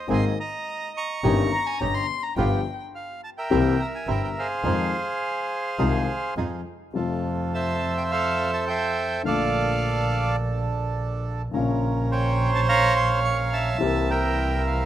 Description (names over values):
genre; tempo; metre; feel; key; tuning
tango; 105 BPM; 4/4; rubato; F minor, F major from 7.0 s; A4 = 440 Hz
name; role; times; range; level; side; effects
bandoneon; melody; 0.0-14.9 s; Ab4 to Db6; -24 LUFS; right 2 dB; none
dark baby grand piano; accompaniment; 0.1-14.9 s; G1 to Ab4; -27 LUFS; left 5 dB; none
bandoneon; stabs; 0.1-14.9 s; Bb3 to Bb4; -33 LUFS; right 6 dB; none
warm double bass; bass; 0.1-14.9 s; G1 to F2; -27 LUFS; right 1 dB; none
warm violin; second line; 1.5-2.8 s; G5 to C6; -28 LUFS; left 6 dB; none
room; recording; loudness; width
studio reverb; rough home demo mix; -22 LUFS; side -12 dB against mid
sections
0.0-7.0 A section; 7.0-14.9 B section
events
none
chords
0.1 Abadd9; 1.2 Eb7/G; 2.4 G7; 3.5 C7; 4.6 Fm7; 7.0 Fmaj7; 9.2 Bbmaj7; 11.5 Bbmadd9; 13.8 C7